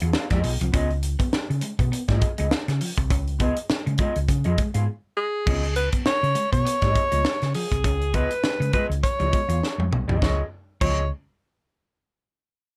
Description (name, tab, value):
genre	funk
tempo	101 BPM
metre	4/4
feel	swing 56% on 16ths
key	Db mixolydian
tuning	A4 = 442 Hz
part	mellow electric guitar	accompaniment	0.0-11.0 s	Cb4 to F5	-32 LUFS	equal	subtle chorus
part	hollow-body short-scale fingered electric bass	bass	0.0-11.1 s	Cb2 to Db3	-27 LUFS	equal	none
part	tight funk drum kit	drums	0.0-11.0 s	crash cymbal, hi-hat, kick drum, snare drum, toms	-27 LUFS	equal	none
part	clean electric guitar	riff	0.3-11.0 s	F3 to Db4	-35 LUFS	equal	none
part	warm alto saxophone	melody	5.2-11.1 s	Ab4 to Db5	-27 LUFS	equal	none
room	little or no reverb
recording	none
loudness	-24 LUFS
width	mono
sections	0.0-5.5 A section; 5.5-10.2 B section; 10.2-12.6 C section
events	break 4.9-5.5; drum fill 9.6-10.2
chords	0.0 Db9